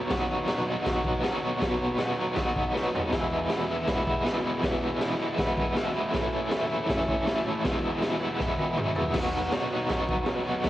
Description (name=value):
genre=garage rock duo or trio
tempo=159 BPM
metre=4/4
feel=straight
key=E major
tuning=A4 = 438 Hz
part: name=overdriven electric guitar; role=riff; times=0.0-10.7 s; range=E2 to F#4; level=-27 LUFS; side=equal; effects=tremolo
part: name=raw garage drum kit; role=drums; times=0.1-10.7 s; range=crash cymbal, kick drum, snare drum, toms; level=-30 LUFS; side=equal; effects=none
room=light reverb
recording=home recording on cassette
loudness=-25 LUFS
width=side -14 dB against mid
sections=0.0-9.1 A section; 9.1-10.7 A section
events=drum fill 2.7-3.1, 8.4-9.1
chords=0.0 B; 3.1 E; 6.1 A; 7.6 E; 9.1 B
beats=| 0.11 0.48 0.86 1.24 | 1.61 1.99 2.37 2.74 | 3.12 3.50 3.87 4.25 | 4.62 5.00 5.38 5.75 | 6.13 6.51 6.88 7.26 | 7.64 8.01 8.39 8.77 | 9.14 9.52 9.89 10.27 | 10.65